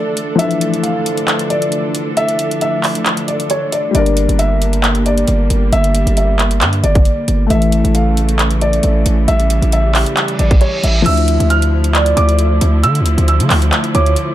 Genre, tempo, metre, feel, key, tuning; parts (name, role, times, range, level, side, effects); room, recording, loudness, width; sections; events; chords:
hip hop, trap; 135 BPM; 4/4; half-time; D harmonic minor; A4 = 440 Hz
dark concert grand piano; melody; 0.0-14.3 s; C#5 to F6; -19 LUFS; equal; low-pass filter, ping-pong delay
felt-muted upright piano; accompaniment; 0.0-14.3 s; E3 to Bb4; -21 LUFS; left 6 dB; low-pass filter
muted symphonic string section; sustained chords; 0.0-14.3 s; C#3 to A4; -21 LUFS; right 2 dB
trap drum kit; drums; 0.2-14.3 s; crash cymbal, handclaps, hi-hat, kick drum; -17 LUFS; equal
distorted 808-style bass; bass; 3.9-14.2 s; G1 to D3; -14 LUFS; equal; distortion
reverse cymbal; sound effects; 10.3-11.1 s; -23 LUFS; right 2 dB
gliding portamento lead; second line; 11.1-14.2 s; C#5 to E5; -20 LUFS; right 4 dB; chorus, ping-pong delay
digital ambience; dark, warm production; -12 LUFS; side -13 dB against mid
0.0-11.1 A section; 11.1-14.3 B section
break 0.0-3.9; reverse cymbal 10.3-11.1
0.0 Dmadd9; 3.9 Gm; 7.5 A; 11.1 Dmadd9